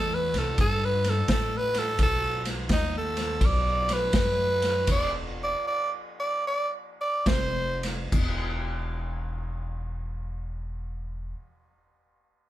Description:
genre	electric blues shuffle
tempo	68-85 BPM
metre	4/4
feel	swing 66% on 8ths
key	unclear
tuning	A4 = 439 Hz
part	growling tenor saxophone	melody	0.0-7.8 s	D#4 to D5	-27 LUFS	right 1 dB	none
part	upright bass	bass	0.0-11.3 s	E1 to A2	-30 LUFS	equal	none
part	vintage drum kit	drums	0.3-8.4 s	crash cymbal, kick drum, ride cymbal, snare drum	-28 LUFS	equal	none
room	light reverb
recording	band playing live in one room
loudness	-24 LUFS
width	side -14 dB against mid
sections	0.0-8.1 A section; 8.1-11.7 B section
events	tenor saxophone solo 0.0-8.1; slowing down 2.0-8.1; stop 4.9-7.3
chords	0.0 C; 2.0 B; 4.9 Dsus2/E; 7.3 F5; 8.1 N.C.

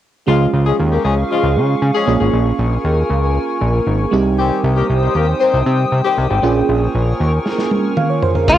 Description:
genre	1980s-style pop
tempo	117 BPM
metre	4/4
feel	straight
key	Bb dorian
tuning	A4 = 439 Hz
part	FM electric piano with soft pad layer	accompaniment	0.3-8.6 s	G3 to F5	-20 LUFS	right 6 dB	chorus, cassette tape
part	glassy FM pad	sustained chords	0.9-8.5 s	Ab4 to Eb6	-22 LUFS	equal	ensemble chorus, built-in reverb, cassette tape
part	mellow horn section	stabs	0.3-6.3 s	Db3 to C5	-19 LUFS	left 6 dB	cassette tape, analog delay
part	fat analog bass	bass	0.3-8.6 s	Ab1 to Db3	-16 LUFS	equal	none
part	modern studio drum kit	drums	7.5-8.6 s	crash cymbal, kick drum, snare drum, toms	-17 LUFS	left 1 dB	cassette tape
part	direct-recorded clean electric guitar	melody	8.5-8.6 s	F4	-9 LUFS	left 1 dB	cassette tape
room	moderate spring reverb, RT60 1.2 s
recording	home recording on cassette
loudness	-13 LUFS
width	side -12 dB against mid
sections	0.3-8.5 A section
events	drum fill 7.5-8.5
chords	0.3 Db; 2.1 Bbm7; 4.1 Cm; 6.4 Bbm7

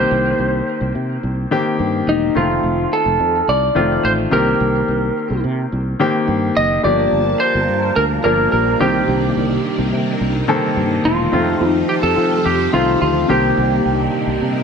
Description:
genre	pop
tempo	107 BPM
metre	4/4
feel	straight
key	unclear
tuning	A4 = 436 Hz
part	lightly driven lead guitar	melody	0.0-14.6 s	Eb4 to Eb5	-18 LUFS	right 1 dB	tape echo
part	clear concert grand piano	accompaniment	0.0-14.6 s	Eb3 to Bb4	-19 LUFS	left 2 dB	none
part	sustaining fretless electric bass	bass	0.0-14.6 s	E1 to F3	-21 LUFS	equal	wide subtle chorus
part	string machine, full ensemble	sustained chords	6.8-14.6 s	C3 to A5	-22 LUFS	right 2 dB	phaser, ensemble chorus
room	moderate scoring stage reverb, RT60 1.7 s, small room ambience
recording	none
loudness	-14 LUFS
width	side -6 dB against mid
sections	0.0-14.6 A section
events	none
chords	0.0 Cm7; 2.4 F7; 4.3 Cm7; 6.8 Gm7; 8.8 Cm7; 11.3 F7; 13.3 Cm7

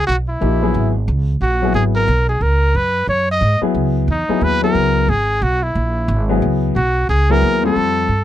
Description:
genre	modal jazz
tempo	180 BPM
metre	4/4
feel	swing 62% on 8ths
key	unclear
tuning	A4 = 439 Hz
part	warm trumpet	melody	0.0-8.2 s	D#4 to D#5	-18 LUFS	equal	none
part	upright bass	bass	0.0-8.2 s	G#1 to G#2	-17 LUFS	right 1 dB	none
part	warm grand piano	accompaniment	0.4-8.1 s	E#3 to A4	-18 LUFS	left 5 dB	none
room	little or no reverb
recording	none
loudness	-14 LUFS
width	side -12 dB against mid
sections	0.0-8.2 A section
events	none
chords	0.0 C#m9 (rootless); 1.1 F#sus2; 3.7 C#m9; 6.4 F#sus2

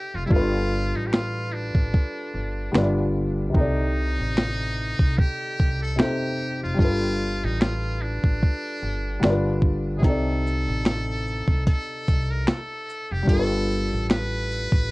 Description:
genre	lo-fi hip hop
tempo	74 BPM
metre	4/4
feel	swing 58% on 16ths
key	C dorian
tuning	A4 = 439 Hz
part	trumpet with metal mute	melody	0.0-14.9 s	D4 to B4	-31 LUFS	equal	none
part	felt-muted upright piano	accompaniment	0.0-14.9 s	C3 to D5	-27 LUFS	left 1 dB	cassette tape
part	upright bass	bass	0.1-14.9 s	F1 to C2	-27 LUFS	equal	none
part	boom bap sampler-style drum kit	drums	0.3-14.9 s	finger snaps, hi-hat, kick drum, shaker, snare drum	-20 LUFS	equal	vintage 12-bit sampler grit
room	light reverb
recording	worn, warbling old tape, cassette tape, warbly pitch drift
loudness	-21 LUFS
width	side -22 dB against mid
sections	0.0-14.9 A section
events	break 0.0-10.0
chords	0.3 G9; 2.7 G7; 3.5 Cm69; 6.8 G9; 9.2 G7; 10.0 Cm69; 13.3 G9

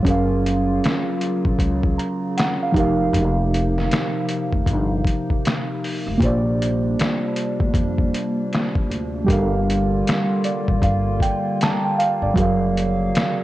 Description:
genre	lo-fi hip hop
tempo	78 BPM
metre	4/4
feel	swing 64% on 16ths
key	Bb major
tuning	A4 = 439 Hz
part	muted felt-like synth keys	accompaniment	0.0-13.4 s	F3 to Bb5	-21 LUFS	right 2 dB	chorus, cassette tape, low-pass filter
part	warbly tape-like pad	sustained chords	0.0-13.4 s	C3 to F5	-28 LUFS	left 2 dB	chorus, built-in reverb, low-pass filter
part	upright bass	bass	0.0-13.1 s	F1 to F2	-23 LUFS	equal	none
part	lo-fi sampler-style drum kit	drums	0.0-13.4 s	finger snaps, hi-hat, kick drum, snare drum	-22 LUFS	left 1 dB	overdrive
room	light reverb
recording	worn, warbling old tape, cassette tape, warbly pitch drift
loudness	-18 LUFS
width	side -15 dB against mid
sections	0.0-13.4 A section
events	synth keys fill 10.1-12.4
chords	0.1 Gbmaj7; 2.7 F7sus4; 6.2 Bb69; 9.3 Gm7; 12.4 Gbmaj7

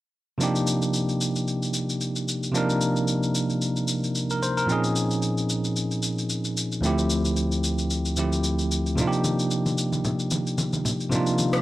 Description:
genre	amapiano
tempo	112 BPM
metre	4/4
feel	swing 55% on 16ths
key	C dorian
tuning	A4 = 440 Hz
part	bell-like tine electric piano	accompaniment	0.4-11.6 s	D2 to C5	-23 LUFS	equal	slow stereo tremolo
part	electronic shaker and rim click	drums	0.4-11.6 s	none	-30 LUFS	left 2 dB	overdrive
part	congas	percussion	9.0-11.5 s	none	-29 LUFS	left 1 dB	none
room	light reverb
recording	dry, gritty hardware recording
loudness	-22 LUFS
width	side -16 dB against mid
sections	0.4-11.6 A section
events	none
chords	0.4 Cm11; 4.7 Bbm11; 6.8 Dm11; 9.0 Cm11

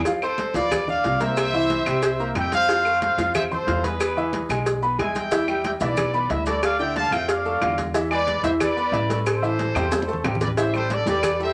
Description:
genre	latin, salsa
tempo	183 BPM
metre	4/4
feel	straight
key	A minor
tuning	A4 = 439 Hz
part	bright upright piano	accompaniment	0.1-11.5 s	D3 to F6	-28 LUFS	equal	none
part	congas	percussion	0.1-11.5 s	none	-36 LUFS	equal	none
part	cowbell and bongos	percussion	0.1-11.4 s	none	-30 LUFS	equal	none
part	maracas	percussion	0.1-11.5 s	none	-44 LUFS	equal	none
part	clear trumpet section	melody	0.2-11.5 s	G#4 to A5	-26 LUFS	equal	none
part	claves	percussion	0.2-11.4 s	none	-35 LUFS	equal	none
part	upright bass	bass	0.5-11.5 s	A1 to F2	-32 LUFS	equal	none
room	wet small room ambience, RT60 0.5 s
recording	none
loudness	-23 LUFS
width	mono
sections	0.1-10.6 A section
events	drum fill 9.7-10.6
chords	0.1 C13sus4; 1.4 C7; 2.7 Fmaj7; 4.0 E; 5.3 Em7; 6.6 Fmaj13; 7.9 E7; 9.3 Am7

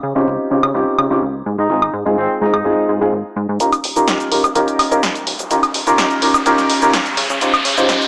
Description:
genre	filtered disco house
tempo	126 BPM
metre	4/4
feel	straight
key	Eb mixolydian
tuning	A4 = 440 Hz
part	plucky analog bass	bass	0.0-8.0 s	Eb1 to Db3	-21 LUFS	equal	high-pass filter, low-pass filter
part	egg shaker	percussion	0.0-3.6 s	none	-66 LUFS	equal	none
part	dark grand piano	accompaniment	0.2-8.1 s	Ab3 to C5	-16 LUFS	equal	phaser, low-pass filter
part	punchy analog drum machine	drums	0.6-8.1 s	hi-hat, shaker, snare drum, woodblock	-18 LUFS	equal	high-pass filter on perc, high-pass filter on hats, high-pass filter on snare
part	clear horn section	melody	1.6-2.9 s	C4 to Eb4	-20 LUFS	equal	vintage 12-bit sampler grit, low-pass filter, digital delay
part	riser	sound effects	5.2-8.1 s	none	-22 LUFS	equal	none
room	wet echo chamber reverb, RT60 1.7 s, small room ambience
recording	small speaker sound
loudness	-13 LUFS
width	side -30 dB against mid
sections	0.0-3.6 A section; 3.6-8.1 B section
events	build-up 3.6-8.1; filter sweep 3.6-8.1; riser 5.2-8.1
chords	0.0 Dbmaj9#11; 1.5 Ab6; 3.6 Eb9; 7.2 Dbmaj9#11

